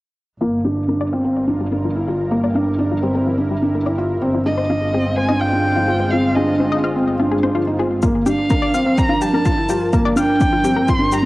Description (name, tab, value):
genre	piano and strings electronica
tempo	126 BPM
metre	4/4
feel	straight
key	G dorian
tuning	A4 = 440 Hz
part	lush unison pad	sustained chords	1.1-11.3 s	G2 to Bb4	-25 LUFS	equal	chorus, cassette tape
part	analog pluck	arpeggios	0.4-11.2 s	F4 to F5	-26 LUFS	left 4 dB	chorus, sidechain pumping, cassette tape, analog delay
part	felt-muted upright piano	riff	0.4-11.3 s	Bb3 to F4	-18 LUFS	equal	low-pass filter, cassette tape
part	clear studio double bass section	bass	0.4-8.0 s	G1	-24 LUFS	equal	transformer saturation, sidechain pumping
part	warm violin	melody	4.5-11.3 s	Eb5 to C6	-22 LUFS	equal	cassette tape
part	electronic kick drum	drums	8.0-11.0 s	none	-20 LUFS	equal	overdrive, cassette tape
part	shaker	drums	8.0-11.2 s	none	-36 LUFS	right 1 dB	overdrive, cassette tape
room	moderate spring reverb, RT60 1.6 s, small room ambience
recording	home recording on cassette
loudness	-15 LUFS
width	side -18 dB against mid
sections	0.4-8.0 A section; 8.0-11.3 B section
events	fade-in on analog synth pad 0.4-8.0; filter sweep on felt piano 0.4-8.0; filter sweep on synth arpeggio sound 0.4-8.0; build-up 8.0-11.3; filter sweep on analog synth pad 8.0-11.3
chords	0.4 Gm7; 4.2 Ab6/G; 8.0 Gm7